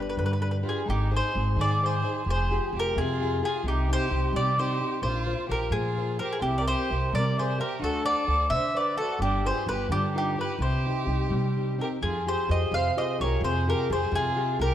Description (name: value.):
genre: italian folk, Italian serenade.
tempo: 86 BPM (dotted quarters).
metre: 6/8.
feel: straight.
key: C minor.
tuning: A4 = 438 Hz.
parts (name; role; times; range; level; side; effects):
mandolin; melody; 0.0-14.7 s; G4 to F5; -28 LUFS; equal; none.
nylon-string guitar; accompaniment; 0.0-14.7 s; C3 to F#5; -31 LUFS; left 2 dB; none.
upright bass; bass; 0.0-14.7 s; F1 to D3; -28 LUFS; equal; none.
rich violin; second line; 0.6-14.7 s; D4 to C5; -34 LUFS; right 4 dB; none.
room: moderate scoring stage reverb, RT60 1.9 s.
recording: dark, warm production.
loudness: -24 LUFS.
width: side -11 dB against mid.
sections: 0.0-12.0 A section; 12.0-14.7 B section.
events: none.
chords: 0.0 G; 0.9 Ab; 2.3 Fmadd9; 3.6 Cm; 5.0 Bbsus2; 6.4 C7; 7.8 D7; 9.2 G7; 10.6 Cm; 12.0 Fmadd9.